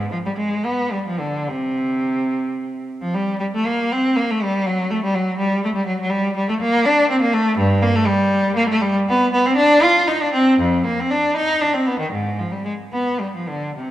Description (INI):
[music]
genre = classical, baroque-style suite movement for unaccompanied cello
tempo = 70-84 BPM (dotted quarters)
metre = 6/8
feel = rubato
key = G minor from 3.1 s, C minor from 9.1 s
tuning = A4 = 441 Hz
[part]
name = rich cello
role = solo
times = 0.0-13.9 s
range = F2 to F4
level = -17 LUFS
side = equal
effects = none
[sound]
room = moderate concert hall reverb, RT60 2.3 s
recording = none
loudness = -17 LUFS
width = side -13 dB against mid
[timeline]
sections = 0.0-3.1 A section; 3.1-13.9 A section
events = none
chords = none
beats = 0.65 | 1.47 2.31 | 3.15 3.92 | 4.66 5.40 | 6.13 6.87 | 7.60 8.32 | 9.07 9.81 | 10.60 11.37 | 12.13 12.93 | 13.75